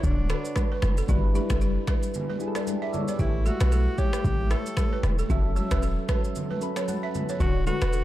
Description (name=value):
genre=afrobeats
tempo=114 BPM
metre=4/4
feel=swing 58% on 16ths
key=D major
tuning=A4 = 440 Hz
part: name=breathy alto saxophone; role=melody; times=0.0-8.0 s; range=D4 to A4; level=-33 LUFS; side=left 1 dB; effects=none
part: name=soft electric-piano-like synth keys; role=accompaniment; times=0.0-8.0 s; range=D3 to B5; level=-31 LUFS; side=left 1 dB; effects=chorus, phaser
part: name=clean 808-style bass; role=bass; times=0.0-8.0 s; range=D1 to B1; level=-24 LUFS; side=equal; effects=none
part: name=deep house drum kit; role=drums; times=0.0-8.0 s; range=finger snaps, kick drum, rim click, shaker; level=-28 LUFS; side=equal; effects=overdrive
part: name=congas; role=percussion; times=0.1-7.8 s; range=none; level=-35 LUFS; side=right 1 dB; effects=none
part: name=balafon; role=riff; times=0.3-8.0 s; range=F#4 to E5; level=-36 LUFS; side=right 6 dB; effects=digital delay
room=little or no reverb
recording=dark, warm production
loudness=-23 LUFS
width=side -14 dB against mid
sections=0.0-8.0 A section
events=none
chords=0.0 Dmaj7; 1.1 G6; 3.2 A7; 5.3 F#m7; 7.4 Dmaj7